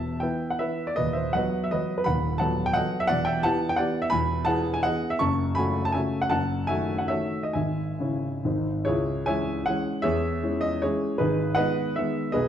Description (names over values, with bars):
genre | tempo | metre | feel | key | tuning
classical, romantic triple-time dance for piano with dotted rhythms | 124-187 BPM | 3/4 | rubato | E minor, C# minor from 4.1 s | A4 = 440 Hz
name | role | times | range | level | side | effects
warm baby grand piano | solo | 0.0-12.5 s | D#1 to C#6 | -23 LUFS | equal | none
room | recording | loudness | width
moderate recital hall reverb, RT60 1.4 s | dark, warm production | -23 LUFS | side -9 dB against mid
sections
0.0-8.9 A section; 8.9-12.5 B section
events
none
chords
0.0 E5; 1.0 B/D#; 2.1 B7/D#; 3.1 Em; 4.1 E; 5.2 F#m; 6.3 D#dim/F#; 7.6 C#m/G#; 8.4 G#; 8.9 C#m; 10.1 C#m/E; 11.2 G#m